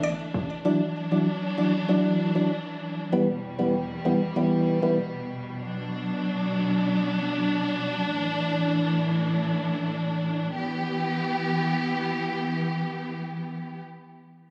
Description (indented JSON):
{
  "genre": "dancehall",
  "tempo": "97 BPM",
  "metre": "4/4",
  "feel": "straight",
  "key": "E minor",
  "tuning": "A4 = 440 Hz",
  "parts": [
    { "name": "mallet-like synth pluck", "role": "melody", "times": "0.0-0.5 s", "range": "D5", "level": "-37 LUFS", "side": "equal", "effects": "chorus, tape echo" },
    { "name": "percussive organ stab", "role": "accompaniment", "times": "0.0-5.0 s", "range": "E3 to D4", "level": "-27 LUFS", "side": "equal", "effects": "chorus" },
    { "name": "warm studio string section", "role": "sustained chords", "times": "0.0-13.8 s", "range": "E2 to G4", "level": "-29 LUFS", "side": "equal", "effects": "none" },
    { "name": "hard-hitting 808-style bass", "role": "bass", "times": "0.0-0.5 s", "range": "G1 to A1", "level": "-33 LUFS", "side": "equal", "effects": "none" }
  ],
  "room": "moderate lush hall reverb, RT60 2.4 s",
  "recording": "recorded on a phone in the room, studio reverb, compression",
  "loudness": "-26 LUFS",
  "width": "mono",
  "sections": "0.7-10.6 A section; 10.6-13.0 B section",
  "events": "none",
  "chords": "0.0 Asus4; 0.7 Dadd9; 3.1 Em; 5.6 Bm; 8.1 Asus4; 10.6 Em",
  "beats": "0.03 | 0.65 1.27 1.89 2.51 | 3.13 3.75 4.36 4.98 | 5.60 6.22 6.84 7.46 | 8.07 8.69 9.31 9.93 | 10.55 11.17 11.79 12.40"
}